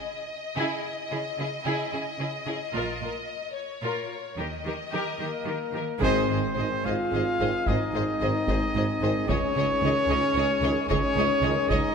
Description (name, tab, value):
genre	cinematic, epic orchestral film score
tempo	74 BPM (dotted quarters)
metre	12/8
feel	straight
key	Ab major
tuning	A4 = 443 Hz
part	rich symphonic violin section	melody	0.0-11.8 s	Db5 to Eb5	-35 LUFS	left 4 dB	none
part	rich symphonic violin section	second line	0.6-11.8 s	Ab4 to Db5	-34 LUFS	left 3 dB	none
part	clear symphonic viola section	accompaniment	0.6-11.8 s	Fb4 to Ab4	-35 LUFS	equal	none
part	rich symphonic cello section	bass	0.6-11.8 s	Db2 to Eb3	-34 LUFS	right 3 dB	none
part	clear symphonic double bass section	bass	2.7-11.8 s	Ab1 to Eb2	-33 LUFS	right 4 dB	none
part	warm French horn section	sustained chords	5.2-11.9 s	Bb3 to F4	-29 LUFS	left 4 dB	none
part	bright trumpet	stabs	5.2-11.9 s	Bb4 to F5	-28 LUFS	right 1 dB	none
part	mellow woodwind section	sustained chords	6.0-11.9 s	Ab3 to Ab5	-36 LUFS	right 1 dB	none
part	warm tuba	bass	6.0-11.8 s	Ab1 to Db2	-33 LUFS	right 4 dB	none
part	taiko ensemble	drums	6.0-11.9 s	none	-32 LUFS	equal	none
part	timpani	percussion	6.0-6.8 s	Ab2	-36 LUFS	left 4 dB	none
part	dark trombone section	sustained chords	6.6-11.5 s	Eb3 to C4	-37 LUFS	right 3 dB	none
room	moderate scoring stage reverb, RT60 1.9 s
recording	none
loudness	-24 LUFS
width	side -6 dB against mid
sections	0.0-6.0 A section; 6.0-11.9 B section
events	build-up 0.0-6.0; band accent 6.0-6.6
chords	0.0 Dbmadd9; 2.7 Bbm; 4.4 Eb; 6.0 Ab; 9.3 Dbsus2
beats	0.31 1.12 1.93 | 2.74 3.56 4.38 5.20 | 6.03 6.86 7.67 8.48 | 9.29 10.10 10.90 11.71